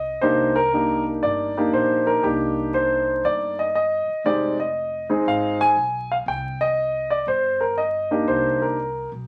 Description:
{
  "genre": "jazz piano trio",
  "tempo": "119 BPM",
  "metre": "4/4",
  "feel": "swing 67% on 8ths",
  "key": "C minor",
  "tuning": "A4 = 442 Hz",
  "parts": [
    { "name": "warm grand piano", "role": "melody", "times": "0.0-9.1 s", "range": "Ab3 to Ab5", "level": "-22 LUFS", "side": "equal", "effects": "none" },
    { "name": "upright bass", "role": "bass", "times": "0.0-9.3 s", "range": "F1 to C2", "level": "-37 LUFS", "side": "equal", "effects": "none" }
  ],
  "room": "wet studio reverb, RT60 0.5 s",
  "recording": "vinyl crackle",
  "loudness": "-22 LUFS",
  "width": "mono",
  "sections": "0.0-9.3 A section",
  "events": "none",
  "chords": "0.2 Cm7; 4.3 Fm7; 6.3 Cm7"
}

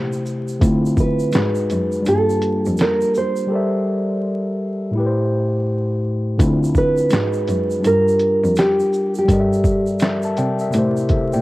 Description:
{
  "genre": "lo-fi hip hop",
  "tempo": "83 BPM",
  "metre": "4/4",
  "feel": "swing 64% on 16ths",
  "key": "unclear",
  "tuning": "A4 = 438 Hz",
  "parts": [
    { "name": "nylon-string guitar", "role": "melody", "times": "0.0-9.9 s", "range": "G4 to C5", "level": "-20 LUFS", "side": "right 1 dB", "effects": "low-pass filter, cassette tape, tape echo" },
    { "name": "mellow tine electric piano", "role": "accompaniment", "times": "0.0-11.4 s", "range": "A2 to A5", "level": "-20 LUFS", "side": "left 1 dB", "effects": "low-pass filter, cassette tape" },
    { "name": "warm cello", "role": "bass", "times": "0.0-11.4 s", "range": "D2 to C3", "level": "-23 LUFS", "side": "equal", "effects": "none" },
    { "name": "egg shaker", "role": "percussion", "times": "0.1-11.4 s", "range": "none", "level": "-41 LUFS", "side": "right 5 dB", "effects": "none" },
    { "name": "lo-fi sampler-style drum kit", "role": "drums", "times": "0.3-11.3 s", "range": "hi-hat, kick drum, shaker, snare drum", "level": "-20 LUFS", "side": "equal", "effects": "cassette tape" }
  ],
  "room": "light reverb, studio reverb",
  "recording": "home recording on cassette, vinyl crackle",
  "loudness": "-16 LUFS",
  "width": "side -18 dB against mid",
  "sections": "0.0-11.4 A section",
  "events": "break 3.5-6.4",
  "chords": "0.0 Am7; 0.6 Dm7; 1.3 G#m7; 2.1 Gm9; 3.5 C13/G; 5.0 Am7; 6.4 Dm7; 7.1 G#m7; 7.8 Gm7; 9.3 C13/G; 10.7 Am7"
}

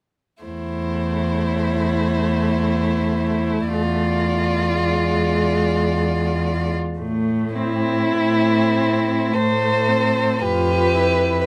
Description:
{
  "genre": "classical, slow romantic movement for string quartet",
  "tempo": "54 BPM",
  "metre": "3/4",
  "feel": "uneven beats, rubato",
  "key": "A minor",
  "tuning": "A4 = 444 Hz",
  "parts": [
    { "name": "warm violin", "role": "melody", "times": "0.4-11.5 s", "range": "C4 to D5", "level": "-29 LUFS", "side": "equal", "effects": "none" },
    { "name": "rich violin", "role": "second line", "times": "0.4-11.5 s", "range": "E4 to C5", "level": "-24 LUFS", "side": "equal", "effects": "none" },
    { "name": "rich viola", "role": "accompaniment", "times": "0.4-11.5 s", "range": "G#3 to F4", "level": "-26 LUFS", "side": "equal", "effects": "none" },
    { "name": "clear cello", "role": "bass", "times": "0.4-11.4 s", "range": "E2 to A2", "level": "-25 LUFS", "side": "equal", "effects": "none" }
  ],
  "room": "light reverb",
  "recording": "close, detailed microphones",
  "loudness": "-20 LUFS",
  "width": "mono",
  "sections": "0.4-7.0 A section; 7.0-11.5 B section",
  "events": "none",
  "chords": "0.4 Am/E; 3.7 E7b9; 7.0 Am; 10.4 Fmaj7(no3)"
}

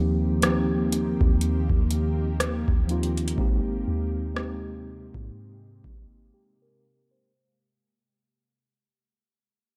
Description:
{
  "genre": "contemporary R&B",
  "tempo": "61 BPM",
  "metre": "4/4",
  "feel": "swing 58% on 16ths",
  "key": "unclear",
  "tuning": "A4 = 440 Hz",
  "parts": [
    { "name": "mellow tine electric piano", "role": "accompaniment", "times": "0.0-7.6 s", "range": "F3 to C5", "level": "-30 LUFS", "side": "equal", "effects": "low-pass filter" },
    { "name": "ethereal airy pad", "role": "sustained chords", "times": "0.0-7.3 s", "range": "C3 to G4", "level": "-36 LUFS", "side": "equal", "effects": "ensemble chorus, built-in reverb, sidechain pumping, low-pass filter" },
    { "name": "soft 808-style bass", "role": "bass", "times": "0.0-6.3 s", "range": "Ab1 to Ab2", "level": "-30 LUFS", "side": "equal", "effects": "none" },
    { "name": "booming analog drum machine", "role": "drums", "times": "0.4-6.1 s", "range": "hi-hat, kick drum, rim click", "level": "-28 LUFS", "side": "equal", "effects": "none" }
  ],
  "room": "light reverb",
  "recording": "dark, warm production",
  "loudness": "-25 LUFS",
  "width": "mono",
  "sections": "0.0-7.3 A section",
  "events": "fade-out 0.0-7.3; filter sweep 0.0-7.3; break 6.3-7.3",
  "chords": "0.0 Eb6; 3.4 Abmaj9"
}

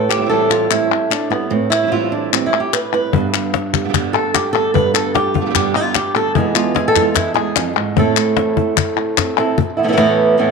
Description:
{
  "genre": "flamenco",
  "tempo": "149 BPM",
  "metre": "4/4",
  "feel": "straight",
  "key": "A minor",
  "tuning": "A4 = 440 Hz",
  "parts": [
    { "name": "flamenco guitar", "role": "melody", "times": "0.0-10.5 s", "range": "E2 to B4", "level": "-16 LUFS", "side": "right 2 dB", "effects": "slapback echo" },
    { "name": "palmas hand claps", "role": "percussion", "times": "0.1-9.6 s", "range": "none", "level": "-20 LUFS", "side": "left 14 dB", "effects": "none" },
    { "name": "flamenco guitar", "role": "stabs", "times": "0.2-9.6 s", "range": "E2 to G4", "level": "-23 LUFS", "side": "right 11 dB", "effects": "none" },
    { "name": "cajon", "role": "percussion", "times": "3.1-10.4 s", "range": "none", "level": "-19 LUFS", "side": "left 9 dB", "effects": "none" }
  ],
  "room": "moderate spring reverb, RT60 2.7 s",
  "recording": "1960s-style stereo with parts hard left and right",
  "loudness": "-14 LUFS",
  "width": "side -4 dB against mid",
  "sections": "0.0-9.6 A section",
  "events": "nylon-string guitar solo 0.0-9.6",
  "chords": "0.0 Am7; 3.1 G; 6.4 E; 8.0 Am; 9.6 Esus4"
}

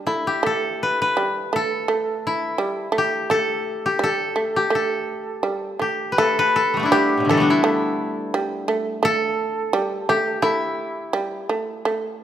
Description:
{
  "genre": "japanese traditional, Japanese chamber music",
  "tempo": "84 BPM",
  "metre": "2/4",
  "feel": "rubato",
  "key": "A suspended pentatonic",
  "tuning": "A4 = 441 Hz",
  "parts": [
    { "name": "koto", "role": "melody", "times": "0.0-12.2 s", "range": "A2 to B4", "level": "-21 LUFS", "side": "left 1 dB", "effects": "none" },
    { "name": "shamisen", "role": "second line", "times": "0.0-12.2 s", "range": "G3 to A3", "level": "-24 LUFS", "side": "right 3 dB", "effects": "none" }
  ],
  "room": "moderate recital hall reverb, RT60 1.8 s",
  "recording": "none",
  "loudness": "-19 LUFS",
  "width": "side -10 dB against mid",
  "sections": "0.0-6.2 A section; 6.2-12.2 B section",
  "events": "none",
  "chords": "none"
}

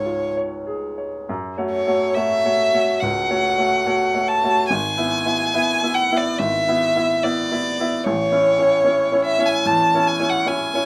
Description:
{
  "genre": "classical, romantic duo for violin and grand piano",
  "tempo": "64-76 BPM",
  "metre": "4/4",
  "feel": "rubato",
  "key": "F# minor",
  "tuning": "A4 = 443 Hz",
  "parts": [
    { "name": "clear violin", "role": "melody", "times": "0.0-10.9 s", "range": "C#5 to A5", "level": "-21 LUFS", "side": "equal", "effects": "none" },
    { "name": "bright baby grand piano", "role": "accompaniment", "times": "0.0-10.9 s", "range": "G#1 to E5", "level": "-24 LUFS", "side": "equal", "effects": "none" }
  ],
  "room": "light reverb",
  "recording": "none",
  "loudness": "-20 LUFS",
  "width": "mono",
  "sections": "0.0-1.3 A section; 1.3-10.9 A section",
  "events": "none",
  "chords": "0.0 C#; 1.3 F#m; 4.7 E/G#; 8.0 A"
}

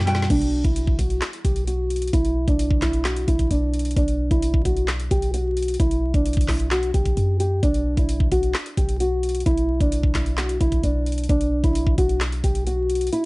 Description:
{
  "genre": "hip hop, trap",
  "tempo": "131 BPM",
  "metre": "4/4",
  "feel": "half-time",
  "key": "B minor",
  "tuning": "A4 = 440 Hz",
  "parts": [
    { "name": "nylon-string guitar", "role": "melody", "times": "0.0-13.3 s", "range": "D4 to G5", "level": "-24 LUFS", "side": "equal", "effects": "low-pass filter" },
    { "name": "clean 808-style bass", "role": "bass", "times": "0.0-13.1 s", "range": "B1 to F#2", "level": "-23 LUFS", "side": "equal", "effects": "none" },
    { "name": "trap drum kit", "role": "drums", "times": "0.0-13.2 s", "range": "crash cymbal, handclaps, hi-hat, kick drum, snare drum", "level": "-24 LUFS", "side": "equal", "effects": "none" }
  ],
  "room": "digital ambience",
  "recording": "dry, gritty hardware recording, vinyl crackle, nothing above 11.0 kHz",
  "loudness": "-19 LUFS",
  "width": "side -23 dB against mid",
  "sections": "0.3-13.3 A section",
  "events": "drum fill 0.0-0.3; filter sweep on nylon-string guitar 0.3-13.3",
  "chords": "0.3 Bm; 4.0 Bsus4; 7.6 Bm"
}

